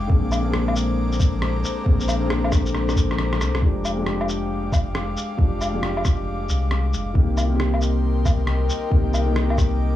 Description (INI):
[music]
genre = future garage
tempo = 136 BPM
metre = 4/4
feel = swing 64% on 16ths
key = F dorian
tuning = A4 = 440 Hz
[part]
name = felt-muted upright piano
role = accompaniment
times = 0.0-10.0 s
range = D3 to Ab4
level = -27 LUFS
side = left 1 dB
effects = sidechain pumping, tape echo
[part]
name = airy breathy pad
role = sustained chords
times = 0.0-10.0 s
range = Ab3 to D6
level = -29 LUFS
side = left 2 dB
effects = chorus, sidechain pumping
[part]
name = warm sub bass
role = bass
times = 0.0-10.0 s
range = F1 to C2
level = -23 LUFS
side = left 1 dB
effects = tube saturation, sidechain pumping
[part]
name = electronic kick drum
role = drums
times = 0.1-9.7 s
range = none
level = -19 LUFS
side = equal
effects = overdrive
[part]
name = electronic shaker, woodblock and rim click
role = drums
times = 0.3-9.7 s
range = none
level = -27 LUFS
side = equal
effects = none
[sound]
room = little or no reverb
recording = dry, gritty hardware recording, small room ambience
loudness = -19 LUFS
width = side -13 dB against mid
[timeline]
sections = 0.0-3.6 A section; 3.6-10.0 B section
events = drum fill 2.7-3.6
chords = 0.1 Bb9; 3.6 Fm69; 7.2 Cm7